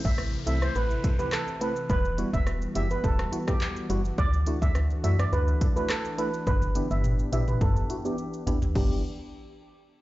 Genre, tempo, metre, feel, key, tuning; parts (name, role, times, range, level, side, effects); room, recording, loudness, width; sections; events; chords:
dancehall; 105 BPM; 4/4; straight; G major; A4 = 441 Hz
warm analog pad; sustained chords; 0.0-9.0 s; C3 to G4; -36 LUFS; left 2 dB; chorus, sidechain pumping, low-pass filter
woody FM bass; bass; 0.0-9.0 s; E1 to F#2; -27 LUFS; equal
deep house drum kit; drums; 0.0-8.9 s; crash cymbal, handclaps, hi-hat, kick drum, rim click, shaker, toms; -27 LUFS; equal
downlifter; sound effects; 0.0-4.2 s; -45 LUFS; left 3 dB
steel pan; melody; 0.1-9.0 s; G4 to E5; -32 LUFS; right 2 dB; low-pass filter, tape echo
percussive organ stab; accompaniment; 0.5-9.0 s; G3 to A4; -34 LUFS; right 1 dB; chorus, sidechain pumping, low-pass filter
little or no reverb; played on a big sound system in a bare room, large studio reverb, nothing above 7.7 kHz; -24 LUFS; side -17 dB against mid
0.0-8.8 A section; 8.8-10.0 B section
filter sweep 0.0-8.8; drum fill 6.5-8.8
0.0 Am; 1.9 Emadd9; 4.2 Dadd9; 6.5 G6